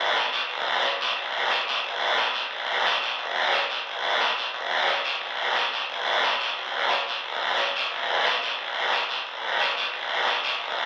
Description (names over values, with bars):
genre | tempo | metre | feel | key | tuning
latin | 178 BPM | 4/4 | straight | none | none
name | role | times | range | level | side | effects
guiro | percussion | 0.2-10.9 s | none | -25 LUFS | equal | none
room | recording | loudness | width
wet studio reverb, RT60 0.8 s | very old 78 rpm record, vinyl crackle, nothing above 10.6 kHz | -25 LUFS | mono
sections
0.0-3.2 A section; 3.2-10.9 B section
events
none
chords
none